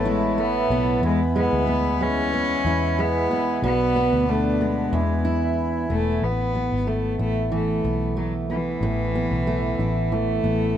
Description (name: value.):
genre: acoustic pop.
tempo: 92 BPM.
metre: 4/4.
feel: swing 55% on 16ths.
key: A major.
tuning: A4 = 440 Hz.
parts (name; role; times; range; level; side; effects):
rich cello; melody; 0.0-10.8 s; E3 to C#4; -25 LUFS; left 2 dB; none.
fingerpicked steel-string acoustic guitar; accompaniment; 0.0-10.8 s; E2 to E4; -24 LUFS; right 2 dB; none.
pedal harmonium; sustained chords; 0.0-6.2 s; D4 to B5; -29 LUFS; left 2 dB; none.
vintage muted fingered electric bass; bass; 0.0-10.8 s; E1 to E2; -26 LUFS; left 1 dB; none.
room: light reverb.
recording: none.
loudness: -20 LUFS.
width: side -10 dB against mid.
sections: 0.0-6.2 A section; 6.2-10.8 B section.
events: none.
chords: 0.0 Asus2; 1.0 E; 3.6 Bm; 4.9 E; 6.2 Asus2.